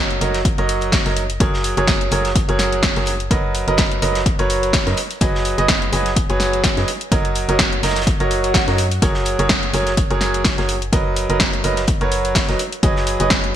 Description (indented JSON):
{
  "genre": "piano house",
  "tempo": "126 BPM",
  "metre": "4/4",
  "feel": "swing 55% on 16ths",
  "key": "F# major",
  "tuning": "A4 = 440 Hz",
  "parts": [
    { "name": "bright upright piano", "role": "riff", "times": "0.0-13.5 s", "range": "F#3 to D#5", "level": "-20 LUFS", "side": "right 2 dB", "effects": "sidechain pumping, ping-pong delay" },
    { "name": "organ-like FM bass", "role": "bass", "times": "0.0-13.5 s", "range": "F#1 to F#2", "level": "-24 LUFS", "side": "equal", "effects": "sidechain pumping" },
    { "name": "house drum kit", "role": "drums", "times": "0.1-13.5 s", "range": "hi-hat, snare drum", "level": "-21 LUFS", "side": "left 1 dB", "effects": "studio reverb, gated reverb" },
    { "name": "crunchy breakbeat drum kit", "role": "drums", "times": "0.2-13.4 s", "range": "hi-hat, snare drum", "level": "-29 LUFS", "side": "equal", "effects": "none" },
    { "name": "electronic kick drum", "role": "drums", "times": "0.5-13.4 s", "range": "none", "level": "-20 LUFS", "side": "equal", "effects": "studio reverb" },
    { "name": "swell", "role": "sound effects", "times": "8.2-9.0 s", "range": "none", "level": "-27 LUFS", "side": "equal", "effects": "none" }
  ],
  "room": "light reverb, small room ambience",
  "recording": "bright 1980s-style digital production",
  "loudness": "-15 LUFS",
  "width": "side -10 dB against mid",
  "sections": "0.0-13.6 A section",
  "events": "swell 8.2-9.0",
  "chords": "0.0 D#m7/F#; 1.4 F#add9; 3.3 Bmaj7/F#; 5.0 G#m7/F#; 6.9 D#m7/F#; 9.0 F#add9; 10.9 Bmaj7/F#; 12.6 G#m7/F#"
}